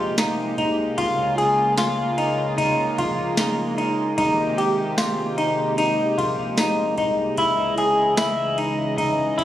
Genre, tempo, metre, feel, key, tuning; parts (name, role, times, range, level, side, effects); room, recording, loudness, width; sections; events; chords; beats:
dream pop; 75 BPM; 4/4; straight; A4 = 440 Hz
warm analog pad; sustained chords; 0.0-9.4 s; C3 to Eb5; -26 LUFS; right 2 dB; chorus
semi-hollow electric guitar; arpeggios; 0.0-9.4 s; Eb4 to Ab4; -21 LUFS; left 1 dB; lush chorus, tape echo
round analog bass; bass; 0.0-9.4 s; Ab1 to Db2; -34 LUFS; equal
soft vintage rhythm box; drums; 0.2-9.4 s; kick drum, ride cymbal, snare drum, tambourine; -28 LUFS; equal
light reverb, digital ambience; recorded on a phone in the room, club reverb, compression; -19 LUFS; side -12 dB against mid
0.0-9.4 A section
0.0 Abmaj9; 1.0 Db6; 4.2 Abmaj9; 7.4 Dbmadd9
0.18 | 0.98 1.78 2.58 3.38 | 4.18 4.98 5.78 6.58 | 7.38 8.18 8.98